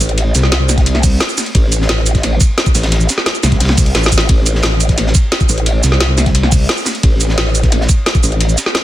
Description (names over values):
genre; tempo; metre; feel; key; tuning
dark technical drum and bass; 175 BPM; 4/4; straight; A minor; A4 = 440 Hz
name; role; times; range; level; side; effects
growl bass; bass; 0.0-8.6 s; A1 to C2; -13 LUFS; equal; chorus, overdrive
crunchy breakbeat drum kit; drums; 0.0-8.8 s; hi-hat, ride cymbal, snare drum; -24 LUFS; equal; high-pass filter on cymbals, high-pass filter on hats, high-pass filter on snare, high-pass filter on room
drum and bass drum kit; drums; 0.0-8.8 s; hi-hat, shaker, snare drum; -16 LUFS; equal; none
electronic kick drum; drums; 0.8-8.2 s; none; -13 LUFS; equal; none
room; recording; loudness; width
little or no reverb; dense, heavily limited modern master; -10 LUFS; side -14 dB against mid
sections
0.0-8.8 A section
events
drum fill 3.9-4.3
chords
none